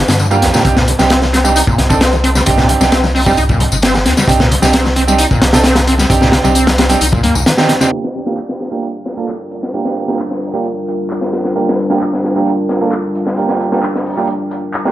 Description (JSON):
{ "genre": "breakbeat, breaks", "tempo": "132 BPM", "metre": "4/4", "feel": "straight", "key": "G minor", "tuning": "A4 = 440 Hz", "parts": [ { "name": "overdriven acid bass", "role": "riff", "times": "0.0-7.9 s", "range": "C2 to Eb4", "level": "-16 LUFS", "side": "equal", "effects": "distortion, lush chorus, tape echo" }, { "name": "saturated sub bass", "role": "bass", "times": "0.0-7.4 s", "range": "G1 to G2", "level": "-16 LUFS", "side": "equal", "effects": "none" }, { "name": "crunchy breakbeat drum kit", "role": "drums", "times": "0.1-14.9 s", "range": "hi-hat, kick drum, snare drum", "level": "-15 LUFS", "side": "equal", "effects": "high-pass filter on kick, high-pass filter on hats, high-pass filter on snare, high-pass filter on room" }, { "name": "electronic tambourine and handclaps", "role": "drums", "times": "0.1-14.8 s", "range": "none", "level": "-24 LUFS", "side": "left 4 dB", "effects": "low-pass filter on perc, low-pass filter on snare, low-pass filter on room, tape echo" }, { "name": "clear grand piano", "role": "stabs", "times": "0.3-14.9 s", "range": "Bb3 to A4", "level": "-17 LUFS", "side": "right 4 dB", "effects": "low-pass filter, tape echo" }, { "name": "congas", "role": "percussion", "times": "0.5-7.9 s", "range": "none", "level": "-24 LUFS", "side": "left 3 dB", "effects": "none" }, { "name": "dark analog pad", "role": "sustained chords", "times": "7.9-14.9 s", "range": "G3 to Bb4", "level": "-18 LUFS", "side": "left 1 dB", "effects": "chorus, sidechain pumping" } ], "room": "moderate spring reverb, RT60 1.3 s, small room ambience", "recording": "echo-heavy mix, low-pass filter", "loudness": "-11 LUFS", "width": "side -14 dB against mid", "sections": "0.0-7.9 A section; 7.9-14.9 B section", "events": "filter sweep 7.9-14.9", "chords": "0.0 Gm7; 0.6 Cmadd9; 7.9 Gm7" }